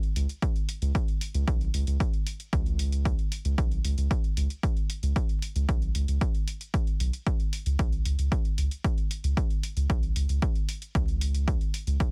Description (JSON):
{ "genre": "dub techno", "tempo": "114 BPM", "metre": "4/4", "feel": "straight", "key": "unclear", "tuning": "A4 = 441 Hz", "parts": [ { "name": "electronic hi-hat", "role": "drums", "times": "0.0-12.1 s", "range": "none", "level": "-42 LUFS", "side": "equal", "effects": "overdrive" }, { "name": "soft dub sub bass", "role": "bass", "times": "0.2-12.1 s", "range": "B1 to C#2", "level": "-29 LUFS", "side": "equal", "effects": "tube saturation, sidechain pumping" }, { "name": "electronic kick drum", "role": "drums", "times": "0.4-12.1 s", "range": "none", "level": "-29 LUFS", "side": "equal", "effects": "overdrive" } ], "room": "little or no reverb", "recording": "dense, heavily limited modern master, vinyl crackle", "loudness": "-28 LUFS", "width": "mono", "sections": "0.0-12.1 A section", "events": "none", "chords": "none" }